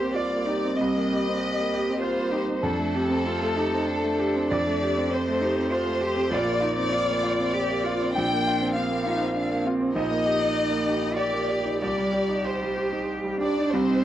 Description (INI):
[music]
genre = neoclassical piano and strings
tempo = 98 BPM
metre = 3/4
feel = rubato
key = C dorian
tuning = A4 = 439 Hz
[part]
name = rich chamber violin section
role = melody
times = 0.0-14.0 s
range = A4 to G5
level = -28 LUFS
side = left 2 dB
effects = none
[part]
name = rich cello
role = second line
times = 0.0-14.0 s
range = C4 to G4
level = -28 LUFS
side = right 2 dB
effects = none
[part]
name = bright concert grand piano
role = accompaniment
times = 0.0-14.0 s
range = Bb1 to G5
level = -26 LUFS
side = equal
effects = none
[sound]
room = light reverb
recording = worn, warbling old tape, cassette tape, warbly pitch drift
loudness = -22 LUFS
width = side -12 dB against mid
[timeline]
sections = 0.0-13.7 A section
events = none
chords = 0.0 Cm7; 2.6 Fadd9; 6.3 Bbsus2; 10.0 Eb/Bb; 11.8 Cm